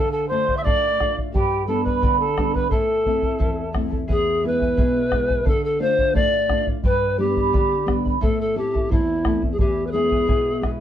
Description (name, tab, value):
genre	andean folk, Andean ensemble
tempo	87 BPM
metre	2/4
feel	straight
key	unclear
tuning	A4 = 439 Hz
part	bright reedy polished pan flute	melody	0.0-10.7 s	E4 to E5	-21 LUFS	left 1 dB	none
part	mellow quena	second line	0.0-3.7 s	G5 to E6	-30 LUFS	right 6 dB	none
part	charango	accompaniment	0.0-10.8 s	E4 to B5	-29 LUFS	right 6 dB	none
part	nylon-string guitar	accompaniment	0.0-10.8 s	E2 to F4	-25 LUFS	left 1 dB	none
part	bombo	percussion	0.5-10.8 s	none	-23 LUFS	equal	none
room	moderate studio reverb, RT60 0.5 s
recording	dark, warm production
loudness	-18 LUFS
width	side -10 dB against mid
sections	0.0-4.1 A section; 4.1-10.8 A section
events	none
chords	0.0 Dm; 1.3 G; 2.7 Am; 4.1 E; 5.5 Dm; 6.8 G; 8.2 Am; 9.6 E